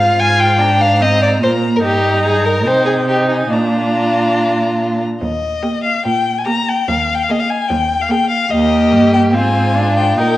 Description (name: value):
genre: quick classical-period movement for string quartet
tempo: 145 BPM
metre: 4/4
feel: rubato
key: Eb major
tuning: A4 = 439 Hz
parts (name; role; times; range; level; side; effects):
- rich violin; melody; 0.0-10.4 s; Eb5 to Bb5; -19 LUFS; left 4 dB; none
- rich violin; second line; 0.0-10.4 s; Eb4 to Ab5; -16 LUFS; left 1 dB; none
- rich viola; accompaniment; 0.0-10.4 s; Bb3 to F4; -17 LUFS; right 1 dB; none
- clear cello; bass; 0.0-10.4 s; Eb2 to C3; -18 LUFS; right 2 dB; none
room: wet recital hall reverb, RT60 1.3 s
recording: worn, warbling old tape, cassette tape, warbly pitch drift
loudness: -12 LUFS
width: side -15 dB against mid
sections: 0.0-5.2 A section; 5.2-10.4 B section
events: none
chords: 0.2 Bb7/Ab; 1.8 Eb/G; 2.7 Cm; 3.5 Bb; 5.2 Eb; 9.3 Fm/Ab